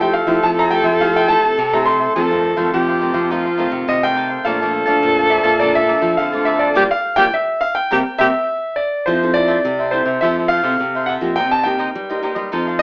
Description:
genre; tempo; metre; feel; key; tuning
samba; 104 BPM; 4/4; straight; F major; A4 = 436 Hz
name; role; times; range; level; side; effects
clear grand piano; melody; 0.0-12.8 s; C5 to C6; -20 LUFS; equal; none
breathy tenor saxophone; second line; 0.0-8.3 s; F4 to A4; -21 LUFS; equal; none
cavaquinho; accompaniment; 0.0-12.8 s; Eb4 to A5; -25 LUFS; equal; none
nylon-string guitar; accompaniment; 0.0-12.8 s; F2 to A4; -26 LUFS; equal; none
nylon-string guitar; bass; 0.0-12.8 s; G2 to G3; -25 LUFS; equal; none
room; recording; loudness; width
moderate studio reverb, RT60 0.7 s; AM radio sound; -17 LUFS; mono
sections
0.0-9.1 A section; 9.1-12.8 B section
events
band accent 6.8-9.1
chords
0.0 Fmaj9; 2.2 F7; 4.5 Bbmaj7; 6.8 Gm7; 7.9 C7; 9.1 Fmaj7; 11.4 Cm7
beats
0.43 1.01 1.58 | 2.16 2.73 3.31 3.89 | 4.46 5.04 5.62 6.19 | 6.77 7.34 7.92 8.49 | 9.07 9.65 10.22 10.80 | 11.38 11.95 12.53

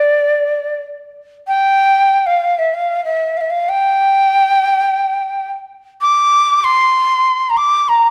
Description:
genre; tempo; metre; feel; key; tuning
turkish; free time; none; none; unclear; A4 = 439 Hz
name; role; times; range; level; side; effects
breathy ney; solo; 0.0-8.1 s; D5 to D6; -14 LUFS; equal; none
room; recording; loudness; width
wet recital hall reverb, RT60 1.7 s; none; -14 LUFS; mono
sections
0.0-8.1 A section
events
none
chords
none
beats
free time

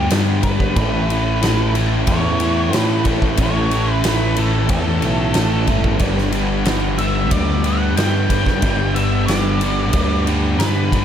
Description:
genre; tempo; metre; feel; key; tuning
rock, shoegaze and dream pop; 92 BPM; 4/4; straight; G lydian; A4 = 443 Hz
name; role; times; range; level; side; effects
octave-fuzz lead guitar; melody; 0.0-11.0 s; A4 to G5; -25 LUFS; equal; distortion, analog delay
biting overdriven guitar; riff; 0.0-11.0 s; G2 to A3; -25 LUFS; equal; none
overdriven semi-hollow guitar; riff; 0.0-11.0 s; A2 to B4; -24 LUFS; right 12 dB; reverse reverb
thick fuzz guitar; riff; 0.0-11.0 s; G2 to A3; -22 LUFS; left 7 dB; distortion, lush chorus
growling picked electric bass; bass; 0.0-11.0 s; G1 to A2; -20 LUFS; equal; overdrive
huge arena drum kit; drums; 0.1-11.0 s; kick drum, ride cymbal, snare drum; -21 LUFS; equal; none
room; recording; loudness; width
studio ambience; none; -15 LUFS; side -9 dB against mid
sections
0.0-11.0 A section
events
none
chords
0.0 G; 0.8 Aadd9; 6.0 G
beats
0.11 | 0.77 1.42 2.08 2.73 | 3.39 4.05 4.70 5.36 | 6.01 6.67 7.33 7.98 | 8.64 9.29 9.95 10.60

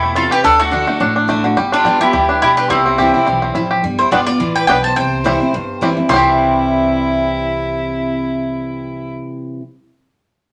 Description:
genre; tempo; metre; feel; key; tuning
bluegrass; 212 BPM; 4/4; swing 55% on 8ths; C major; A4 = 443 Hz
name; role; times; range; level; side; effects
mandolin; melody; 0.0-9.2 s; C4 to C6; -18 LUFS; equal; none
clear fiddle; second line; 0.0-9.1 s; E4 to D5; -25 LUFS; equal; none
picked steel-string acoustic guitar; accompaniment; 0.0-9.6 s; G2 to F#4; -22 LUFS; equal; none
bluegrass banjo; arpeggios; 0.0-9.2 s; D3 to G4; -19 LUFS; equal; none
upright bass; bass; 0.0-9.2 s; G1 to E2; -29 LUFS; equal; none
room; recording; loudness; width
wet studio reverb, RT60 0.6 s; none; -15 LUFS; mono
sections
0.0-3.8 A section; 3.8-6.1 B section; 6.1-8.4 C section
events
none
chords
0.4 D; 1.6 G7; 2.7 C; 3.8 G7; 5.0 C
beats
0.16 | 0.44 0.72 1.01 1.29 | 1.57 1.85 2.14 2.42 | 2.70 2.98 3.27 3.55 | 3.83 4.12 4.40 4.68 | 4.96 5.25 5.53 5.81 | 6.09 6.38 6.66 6.94 | 7.23 7.51 7.79 8.07

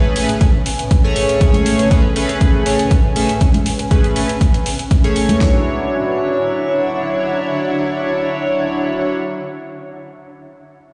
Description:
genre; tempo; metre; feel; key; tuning
deep house; 120 BPM; 4/4; swing 53% on 16ths; D lydian; A4 = 440 Hz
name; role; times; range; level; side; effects
chorused polysynth; stabs; 0.0-9.1 s; F#3 to E5; -20 LUFS; equal; sidechain pumping, dub echo
granular cloud pad; texture; 0.0-9.4 s; A2 to G#5; -26 LUFS; equal; built-in reverb, sidechain pumping
electronic hi-hat; drums; 0.2-5.4 s; none; -28 LUFS; equal; none
deep house drum kit; drums; 0.4-5.5 s; kick drum, snare drum; -17 LUFS; equal; overdrive
congas; percussion; 1.5-5.4 s; none; -25 LUFS; equal; none
room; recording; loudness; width
moderate echo chamber reverb, RT60 2.4 s; played on a big sound system in a bare room, stone room reverb, nothing above 10.3 kHz; -16 LUFS; mono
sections
0.0-5.4 A section; 5.4-9.4 B section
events
none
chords
0.0 Amaj9; 5.4 Dmaj9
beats
0.41 0.91 | 1.41 1.91 2.41 2.91 | 3.41 3.91 4.41 4.91 | 5.41 5.91 6.41 6.91 | 7.41 7.91 8.41 8.91

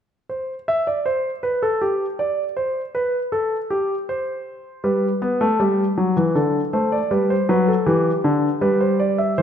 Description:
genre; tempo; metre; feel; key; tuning
classical, baroque-style two-part invention for grand piano; 79 BPM; 3/4; straight; unclear; A4 = 440 Hz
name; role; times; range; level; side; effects
warm concert grand piano; solo; 0.3-9.4 s; D3 to E5; -18 LUFS; equal; none
room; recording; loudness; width
wet recital hall reverb, RT60 1.6 s; none; -18 LUFS; side -8 dB against mid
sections
0.3-9.4 A section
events
none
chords
0.3 N.C.; 4.8 G; 6.4 D5; 7.1 G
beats
| 0.29 1.06 1.82 | 2.57 3.33 4.09 | 4.84 5.60 6.36 | 7.12 7.87 8.62 | 9.38

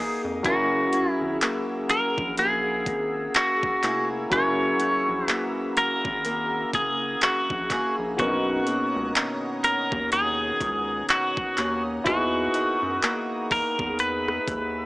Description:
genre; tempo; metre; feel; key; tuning
contemporary R&B; 62 BPM; 4/4; swing 58% on 16ths; unclear; A4 = 443 Hz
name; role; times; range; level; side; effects
clean electric guitar; melody; 0.0-14.9 s; F#4 to C#5; -24 LUFS; equal; analog delay
warm grand piano; accompaniment; 0.0-14.9 s; B2 to A#4; -30 LUFS; equal; none
glassy FM pad; sustained chords; 0.0-14.9 s; G#4 to E6; -35 LUFS; left 1 dB; ensemble chorus, built-in reverb, sidechain pumping
picked acoustic archtop guitar; arpeggios; 0.0-14.9 s; B2 to G#4; -33 LUFS; equal; none
rubbery square bass; bass; 0.2-14.9 s; E#1 to F#2; -35 LUFS; equal; none
trap drum kit; drums; 0.4-14.7 s; handclaps, hi-hat, kick drum, rim click; -28 LUFS; equal; none
room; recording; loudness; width
digital ambience; dry, gritty hardware recording, cassette tape, small speaker sound; -22 LUFS; side -21 dB against mid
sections
0.0-14.9 A section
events
none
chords
0.4 F#9; 8.2 Bmaj9; 12.1 Emaj9#11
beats
| 0.45 1.41 2.38 3.35 | 4.32 5.28 6.25 7.22 | 8.19 9.15 10.12 11.09 | 12.06 13.03 13.99

